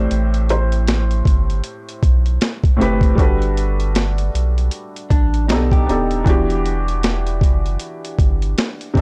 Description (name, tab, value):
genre	lo-fi hip hop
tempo	78 BPM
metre	4/4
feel	swing 59% on 16ths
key	E minor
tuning	A4 = 441 Hz
part	dark upright piano	melody	0.0-2.4 s	C5	-30 LUFS	equal	low-pass filter, analog delay
part	felt-muted upright piano	accompaniment	0.0-9.0 s	A2 to C5	-25 LUFS	equal	low-pass filter
part	saturated sub bass	bass	0.0-9.0 s	D#1 to C2	-21 LUFS	equal	transformer saturation
part	boom bap sampler-style drum kit	drums	0.1-9.0 s	hi-hat, kick drum, snare drum	-19 LUFS	equal	none
part	electric guitar through a small old amp	second line	5.1-6.2 s	D4 to G4	-30 LUFS	equal	low-pass filter, analog delay
room	little or no reverb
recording	dry, gritty hardware recording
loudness	-18 LUFS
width	mono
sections	0.0-9.0 A section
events	none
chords	0.0 Am9; 3.2 Gmaj9; 5.5 B7alt; 6.3 Em9